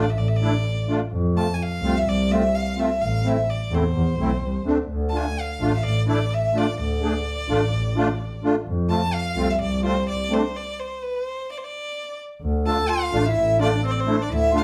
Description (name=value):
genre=klezmer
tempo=128 BPM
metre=4/4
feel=straight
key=D minor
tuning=A4 = 440 Hz
part: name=clear violin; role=melody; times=0.0-14.6 s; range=B4 to A5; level=-28 LUFS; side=equal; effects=none
part: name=musette accordion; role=accompaniment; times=0.0-14.6 s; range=A3 to G#4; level=-26 LUFS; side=equal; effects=none
part: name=muted double bass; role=bass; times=0.2-14.6 s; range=A1 to F2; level=-26 LUFS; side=equal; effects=none
part: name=bright clarinet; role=second line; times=12.7-14.6 s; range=C4 to A4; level=-29 LUFS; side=equal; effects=none
room=wet studio reverb, RT60 0.6 s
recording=heard from further back in the room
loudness=-23 LUFS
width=mono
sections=0.0-12.4 A section; 12.4-14.6 A section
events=stop 10.5-12.4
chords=0.0 D5; 1.1 F; 3.0 Am; 4.9 Dm; 8.7 F; 10.5 N.C.; 12.4 Dm